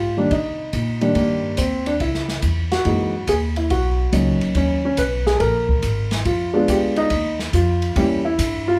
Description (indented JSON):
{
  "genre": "jazz piano trio",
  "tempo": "141 BPM",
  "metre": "4/4",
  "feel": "swing 67% on 8ths",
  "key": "unclear",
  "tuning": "A4 = 439 Hz",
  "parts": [
    { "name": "dark baby grand piano", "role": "melody", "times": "0.0-8.8 s", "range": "Eb3 to B4", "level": "-22 LUFS", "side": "equal", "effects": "none" },
    { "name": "upright bass", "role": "bass", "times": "0.0-8.8 s", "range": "Ab1 to C3", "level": "-25 LUFS", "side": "equal", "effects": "none" },
    { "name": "open jazz drum kit", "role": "drums", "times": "0.3-8.5 s", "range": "hi-hat, kick drum, ride cymbal, snare drum", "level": "-30 LUFS", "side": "equal", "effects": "none" }
  ],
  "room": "moderate large studio reverb, RT60 0.9 s",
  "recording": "band playing live in one room",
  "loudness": "-20 LUFS",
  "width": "mono",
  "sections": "0.0-8.8 A section",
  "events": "none",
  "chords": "0.3 Cm7; 2.0 Dbm; 2.9 Gb13; 3.7 Bmaj9; 5.4 Bb7b9; 7.1 Ebsus2; 8.0 Edim7"
}